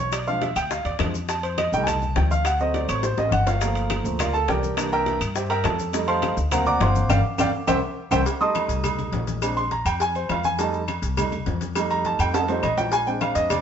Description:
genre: Afro-Cuban jazz.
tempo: 206 BPM.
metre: 4/4.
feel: straight.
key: F mixolydian.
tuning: A4 = 439 Hz.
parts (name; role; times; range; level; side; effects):
warm grand piano; accompaniment; 0.0-13.6 s; E3 to Eb6; -23 LUFS; right 2 dB; none.
upright bass; bass; 0.0-13.6 s; G1 to G2; -26 LUFS; left 1 dB; none.
bongos and cowbell; percussion; 0.1-13.6 s; none; -32 LUFS; left 4 dB; none.
claves; percussion; 0.1-13.6 s; none; -35 LUFS; left 8 dB; none.
congas; percussion; 0.1-13.6 s; none; -33 LUFS; left 6 dB; none.
maracas; percussion; 0.1-13.6 s; none; -39 LUFS; left 7 dB; none.
timbales and agogo bells; percussion; 0.1-13.6 s; none; -31 LUFS; right 5 dB; none.
room: moderate stone room reverb, RT60 1.2 s.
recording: band playing live in one room, nothing above 7.8 kHz.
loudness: -20 LUFS.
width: side -8 dB against mid.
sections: 0.0-8.3 A section; 8.3-13.6 A section.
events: grand piano solo 0.0-13.6; drum fill 3.0-3.6, 7.4-8.3, 12.3-12.9; band accent 7.1-8.3.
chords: 0.1 Bdim7; 1.3 F7; 2.5 D7; 3.6 Gm7; 4.8 C7; 5.9 F7; 6.5 D7alt; 7.1 G5; 7.7 C; 8.3 Am7b5; 9.4 Bb7; 10.6 F7; 12.9 Bb7.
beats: | 0.13 0.42 0.71 1.00 | 1.29 1.58 1.87 2.16 | 2.45 2.74 3.03 3.32 | 3.61 3.90 4.20 4.49 | 4.78 5.07 5.36 5.65 | 5.94 6.23 6.52 6.81 | 7.10 7.39 7.68 7.97 | 8.26 8.55 8.84 9.13 | 9.43 9.72 10.01 10.30 | 10.59 10.88 11.17 11.47 | 11.76 12.05 12.34 12.63 | 12.92 13.21 13.51.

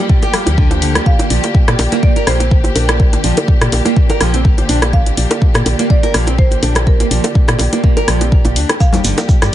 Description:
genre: afro house.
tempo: 124 BPM.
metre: 4/4.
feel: swing 55% on 16ths.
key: unclear.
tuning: A4 = 441 Hz.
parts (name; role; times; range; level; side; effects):
warm symphonic string section; sustained chords; 0.0-9.5 s; D3 to G4; -24 LUFS; left 4 dB; sidechain pumping.
nylon-string guitar; arpeggios; 0.0-9.2 s; D3 to Bb4; -21 LUFS; right 2 dB; sidechain pumping, digital delay.
tine electric piano; stabs; 0.0-9.5 s; Bb3 to F5; -24 LUFS; right 4 dB; medium stereo tremolo, sidechain pumping, digital delay.
electronic kick drum; drums; 0.1-9.4 s; none; -12 LUFS; equal; none.
deep house drum kit; drums; 0.2-9.5 s; hi-hat, rim click; -18 LUFS; left 1 dB; none.
bongos; percussion; 0.2-9.5 s; none; -22 LUFS; equal; none.
woody FM bass; bass; 0.5-9.5 s; G1 to Bb2; -16 LUFS; equal; tube saturation, sidechain pumping.
marimba with medium mallets; melody; 1.1-9.5 s; Bb4 to F5; -25 LUFS; right 3 dB; digital delay.
maracas; percussion; 8.8-9.5 s; none; -26 LUFS; right 3 dB; none.
congas; percussion; 8.9-9.0 s; none; -20 LUFS; left 5 dB; none.
room: small room ambience.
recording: nothing above 11.0 kHz.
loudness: -10 LUFS.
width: side -12 dB against mid.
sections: 0.0-9.5 A section.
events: none.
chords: 0.0 Gm7; 1.1 Bb6; 8.8 Gm7.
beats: 0.10 0.58 | 1.06 1.55 2.03 2.51 | 3.00 3.48 3.97 4.45 | 4.93 5.42 5.90 6.38 | 6.87 7.35 7.84 8.32 | 8.80 9.29.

